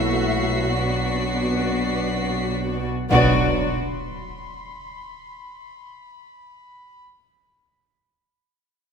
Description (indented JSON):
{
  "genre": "cinematic",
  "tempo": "free time",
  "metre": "none",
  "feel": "none",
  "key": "B minor",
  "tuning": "A4 = 441 Hz",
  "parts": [
    { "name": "warm studio violin section", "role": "melody", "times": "0.0-3.8 s", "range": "D5 to E5", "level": "-29 LUFS", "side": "left 3 dB", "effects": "none" },
    { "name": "warm studio violin section", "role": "second line", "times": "0.0-3.8 s", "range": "F#4", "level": "-26 LUFS", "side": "left 1 dB", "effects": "none" },
    { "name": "dark studio viola section", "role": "accompaniment", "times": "0.0-3.8 s", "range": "A3 to B3", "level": "-29 LUFS", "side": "left 1 dB", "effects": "none" },
    { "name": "warm French horn section", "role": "sustained chords", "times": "0.0-3.7 s", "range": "F#3 to E4", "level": "-26 LUFS", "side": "left 2 dB", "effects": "none" },
    { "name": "dark chamber cello section", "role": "bass", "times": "0.0-3.8 s", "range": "B2", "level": "-27 LUFS", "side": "right 3 dB", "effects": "none" },
    { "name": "rich studio double bass section", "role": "bass", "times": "0.0-3.8 s", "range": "B1", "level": "-28 LUFS", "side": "right 3 dB", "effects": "none" },
    { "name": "warm studio violin section", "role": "texture", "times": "0.0-7.0 s", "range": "B5 to C7", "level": "-34 LUFS", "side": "left 1 dB", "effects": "none" },
    { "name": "impact", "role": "sound effects", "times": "3.1-7.6 s", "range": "none", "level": "-30 LUFS", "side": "equal", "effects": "none" }
  ],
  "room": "wet concert hall reverb, RT60 2.0 s",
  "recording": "none",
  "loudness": "-19 LUFS",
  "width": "side -6 dB against mid",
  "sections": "0.0-3.1 A section; 3.1-7.6 B section",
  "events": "impact 3.1-7.6",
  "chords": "0.0 F#m7/B; 0.8 Bm"
}